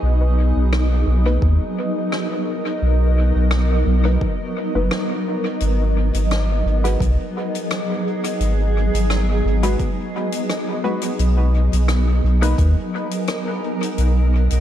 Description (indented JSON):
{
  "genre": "ambient dub",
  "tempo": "86 BPM",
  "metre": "4/4",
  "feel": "swing 54% on 16ths",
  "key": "unclear",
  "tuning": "A4 = 440 Hz",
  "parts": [
    { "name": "granular cloud pad", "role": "sustained chords", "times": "0.0-14.6 s", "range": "F#3 to D#5", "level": "-23 LUFS", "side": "equal", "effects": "built-in reverb" },
    { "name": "soft dub sub bass", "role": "bass", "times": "0.0-14.6 s", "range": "F#1 to D#2", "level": "-16 LUFS", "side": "equal", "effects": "none" },
    { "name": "soft-mallet drum kit", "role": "drums", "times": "0.7-14.6 s", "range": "hi-hat, rim click", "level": "-30 LUFS", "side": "left 2 dB", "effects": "dub echo" },
    { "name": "filtered dub chord stab", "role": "stabs", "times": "1.3-12.6 s", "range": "G#3 to B4", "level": "-28 LUFS", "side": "left 1 dB", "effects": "wide subtle chorus, cassette tape, dub echo" },
    { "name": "electronic kick drum", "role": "drums", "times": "1.4-12.7 s", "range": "none", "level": "-24 LUFS", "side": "equal", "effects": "none" }
  ],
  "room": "light reverb, small room ambience",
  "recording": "echo-heavy mix",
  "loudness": "-17 LUFS",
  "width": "side -11 dB against mid",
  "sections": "0.0-14.6 A section",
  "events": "none",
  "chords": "0.0 Bmaj7; 5.6 G#m7; 11.2 Bmaj7"
}